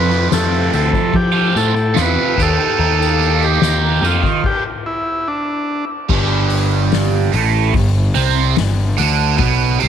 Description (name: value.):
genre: psychedelic rock.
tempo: 73 BPM.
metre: 4/4.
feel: straight.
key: G mixolydian.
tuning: A4 = 440 Hz.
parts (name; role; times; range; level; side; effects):
overdriven combo organ; melody; 0.0-5.8 s; D4 to B4; -20 LUFS; left 2 dB; spring reverb, tape echo.
cranked stack guitar; riff; 0.0-9.9 s; F2 to G4; -17 LUFS; right 10 dB; overdrive, phaser.
fuzz picked electric bass; bass; 0.0-9.9 s; G1 to F3; -17 LUFS; left 1 dB; overdrive.
tambourine; percussion; 0.1-4.4 s; none; -33 LUFS; left 15 dB; none.
soft-mallet drum kit; drums; 0.3-9.9 s; crash cymbal, hi-hat, kick drum, ride cymbal, snare drum; -22 LUFS; left 5 dB; none.
room: studio ambience.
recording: 1960s-style stereo with parts hard left and right.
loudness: -13 LUFS.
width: side -8 dB against mid.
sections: 0.0-6.1 A section; 6.1-9.9 B section.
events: stop 4.4-6.1.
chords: 0.0 F; 2.4 Eb; 4.4 N.C.; 6.1 G.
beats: 0.32 1.15 1.97 | 2.79 3.62 4.44 5.27 | 6.09 6.91 7.74 8.56 | 9.39.